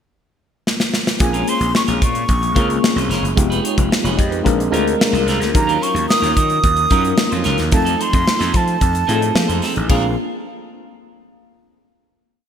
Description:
polished 1980s jazz-funk pop; 110 BPM; 4/4; straight; Bb minor; A4 = 439 Hz
modern studio drum kit; drums; 0.7-10.0 s; crash cymbal, hi-hat, kick drum, snare drum; -18 LUFS; equal; gated reverb
breathy jazz flute; melody; 1.2-10.2 s; F5 to Eb6; -21 LUFS; right 2 dB; ping-pong delay
tine electric piano; accompaniment; 1.2-10.2 s; Gb3 to Eb5; -21 LUFS; left 2 dB; medium stereo tremolo, wide subtle chorus
clean electric guitar; riff; 1.2-10.1 s; F3 to Db5; -25 LUFS; right 3 dB; wide subtle chorus
gritty slap bass; bass; 1.2-10.1 s; F1 to F3; -21 LUFS; equal; overdrive
moderate lush hall reverb, RT60 2.4 s; bright 1980s-style digital production; -14 LUFS; side -8 dB against mid
0.0-1.2 pickup bar; 1.2-9.9 verse; 9.9-12.1 final chord
drum fill 0.7-1.2
0.0 N.C.; 1.2 Bbm7; 3.4 Fm7b5; 4.5 Bb7; 5.5 Ebm9; 7.7 F7; 9.9 Bb7
0.12 0.66 | 1.20 1.74 2.29 2.83 | 3.37 3.92 4.46 5.00 | 5.55 6.09 6.63 7.18 | 7.72 8.27 8.81 9.35 | 9.89

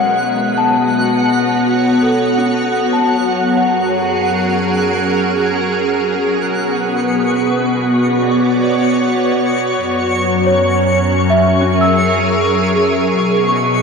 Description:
ambient; 71 BPM; 4/4; straight; A4 = 440 Hz
soft additive organ-like pad; sustained chords; 0.0-13.8 s; F#3 to D5; -14 LUFS; equal; ensemble chorus, built-in reverb
worn celesta; arpeggios; 0.0-13.8 s; C#4 to E6; -18 LUFS; left 1 dB; ping-pong delay
rich chamber cello section; bass; 0.0-13.8 s; F#2 to B2; -25 LUFS; left 1 dB
twinkling granular texture; texture; 0.0-13.8 s; F#5 to C#6; -22 LUFS; equal; built-in reverb
wet huge ambient reverb, RT60 7.9 s; worn, warbling old tape, cassette tape, warbly pitch drift; -12 LUFS; side -5 dB against mid
0.0-6.4 A section; 6.4-13.8 B section
fade-out on cello section 0.0-6.4
0.0 B5; 3.0 F#; 6.4 Bm; 9.8 F#7; 13.2 N.C.
0.46 1.30 2.14 | 2.99 3.83 4.69 5.55 | 6.42 7.27 8.12 8.96 | 9.80 10.64 11.48 12.32 | 13.15

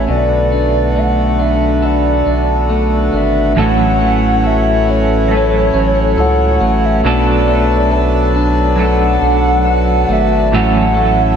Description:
dream pop; 69 BPM; 4/4; straight; A major; A4 = 438 Hz
warbly nostalgic lead; melody; 0.0-11.4 s; C#5 to F#5; -17 LUFS; equal; chorus, diffuse ambient delay
pedal harmonium; sustained chords; 0.0-11.4 s; D3 to A4; -17 LUFS; equal
electric guitar at the edge of break-up; arpeggios; 0.0-11.4 s; A2 to A4; -17 LUFS; left 2 dB; wide subtle chorus, diffuse ambient delay
round analog bass; bass; 0.0-11.4 s; G#1 to C#2; -16 LUFS; right 1 dB
semi-hollow electric guitar; accompaniment; 3.6-11.4 s; A2 to A4; -20 LUFS; right 4 dB; tremolo, wide subtle chorus
wet lush hall reverb, RT60 3.1 s; dreamy mix soaked in reverb; -11 LUFS; side -7 dB against mid
0.0-3.6 A section; 3.6-11.4 B section
0.1 Bm7; 3.6 A6; 7.0 Bm7; 10.5 A6
| 0.09 0.96 1.83 2.70 | 3.57 4.44 5.31 6.18 | 7.05 7.92 8.79 9.65 | 10.53

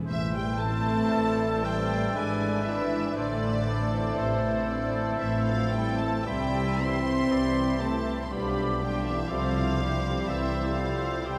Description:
classical, slow romantic movement for symphony orchestra; 59 BPM; 3/4; uneven beats, rubato; A minor; A4 = 441 Hz
clear studio violin section; melody; 0.1-11.4 s; C5 to C6; -37 LUFS; equal
mellow hollow concert flute; second line; 0.1-11.4 s; B5 to E6; -40 LUFS; equal
warm oboe; second line; 0.1-11.4 s; E4 to C5; -41 LUFS; equal
warm bassoon; accompaniment; 0.1-11.4 s; D3 to A3; -39 LUFS; equal
dark French horn section; sustained chords; 0.1-11.4 s; C3 to C4; -34 LUFS; equal
dark chamber cello section; bass; 0.1-11.4 s; G#2 to C3; -36 LUFS; equal
rich symphonic double bass section; bass; 0.1-11.4 s; G#1 to C2; -35 LUFS; equal
warm symphonic violin section; second line; 0.6-11.4 s; E4 to C5; -40 LUFS; equal
dark studio viola section; accompaniment; 0.6-11.4 s; E3 to D4; -37 LUFS; equal
bright clarinet; second line; 1.1-11.4 s; G4 to E5; -39 LUFS; equal
wet huge ambient reverb, RT60 8.6 s; in a vast, echoing space; -27 LUFS; mono
0.1-11.4 A section
0.1 Am; 2.2 E7/G#; 3.2 Am; 6.3 C; 8.3 G7/B; 9.3 C
| 0.08 1.12 2.15 | 3.17 4.18 5.21 | 6.26 7.32 8.31 | 9.30 10.29 11.25

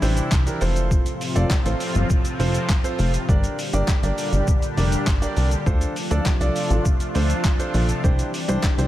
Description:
dance-pop; 101 BPM; 4/4; straight; D minor; A4 = 440 Hz
warm concert grand piano; accompaniment; 0.0-8.9 s; C4 to D5; -27 LUFS; right 2 dB; sidechain pumping
sweeping resonant pad; sustained chords; 0.0-8.9 s; A2 to G4; -27 LUFS; left 1 dB; chorus, sidechain pumping
plucky analog bass; bass; 0.0-8.9 s; F1 to D2; -21 LUFS; equal; sidechain pumping
boom bap sampler-style drum kit; drums; 0.0-8.9 s; handclaps, hi-hat, kick drum, shaker, snare drum; -22 LUFS; equal
group handclap; percussion; 0.3-8.8 s; -40 LUFS; left 4 dB
light reverb; -19 LUFS; side -14 dB against mid
0.0-8.9 A section
0.0 Cadd9; 0.6 F; 3.3 Gm; 5.7 Dm7; 8.0 Cadd9
0.32 | 0.91 1.51 2.10 2.69 | 3.29 3.88 4.48 5.07 | 5.66 6.26 6.85 7.45 | 8.04 8.63

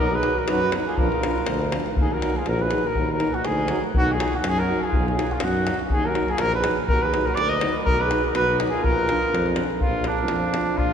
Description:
balkan folk, Balkan brass band; 122 BPM; 2/4; swing 56% on 16ths; A4 = 440 Hz
mellow trumpet; melody; 0.0-10.9 s; D4 to Eb5; -24 LUFS; equal
warm alto saxophone; second line; 0.0-9.6 s; D4 to Cb5; -31 LUFS; right 2 dB
clear euphonium; accompaniment; 0.0-10.9 s; F3 to F#3; -32 LUFS; right 4 dB
mellow French horn; accompaniment; 0.0-10.9 s; D4 to D#4; -32 LUFS; left 3 dB
mellow tuba; bass; 0.0-10.9 s; Bb1 to F#2; -27 LUFS; equal
davul; percussion; 0.2-10.9 s; -26 LUFS; left 1 dB
wet cathedral reverb, RT60 5.7 s; recorded in a church or concert hall; -20 LUFS; side -8 dB against mid
0.0-2.0 A section; 2.0-9.8 A section; 9.8-10.9 B section
trumpet solo 9.8-10.9
0.0 B; 1.0 Bb; 2.0 Ebm; 3.9 B; 5.9 Ebm; 7.9 B; 8.8 Bb
0.48 | 0.97 1.47 | 1.97 2.46 | 2.96 3.45 | 3.94 4.43 | 4.93 5.42 | 5.91 6.40 | 6.89 7.38 | 7.87 8.36 | 8.84 9.33 | 9.82 10.31 | 10.79

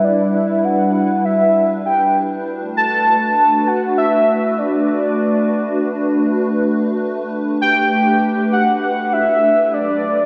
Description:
IDM; 99 BPM; 4/4; straight; A4 = 440 Hz
warm velvety synth lead; melody; 0.0-10.3 s; D5 to A5; -18 LUFS; equal; chorus, tape echo
hollow soft pad; sustained chords; 0.0-10.3 s; F#3 to B4; -20 LUFS; equal; ensemble chorus
wet lush hall reverb, RT60 2.6 s; dreamy mix soaked in reverb; -16 LUFS; mono
0.0-10.3 A section
0.0 Em7; 2.5 Bm7; 7.3 Gadd9
| 0.04 0.65 1.25 1.86 | 2.46 3.07 3.68 4.28 | 4.89 5.49 6.10 6.71 | 7.31 7.92 8.52 9.13 | 9.74

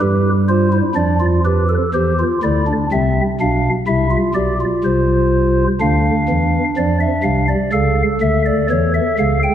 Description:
classical, baroque-style 3-part fugue for pipe organ; 62 BPM; 4/4; straight; D minor from 5.8 s; A4 = 440 Hz
chamber organ, stopped flute; solo; 0.0-9.5 s; B1 to G5; -14 LUFS; equal
wet concert hall reverb, RT60 2.1 s; -14 LUFS; side -10 dB against mid
0.0-5.8 A section; 5.8-9.5 B section
0.0 G7; 1.9 C; 5.8 Dm; 7.7 A/C#
0.00 0.95 | 1.92 2.89 3.85 4.82 | 5.80 6.77 7.74 8.71

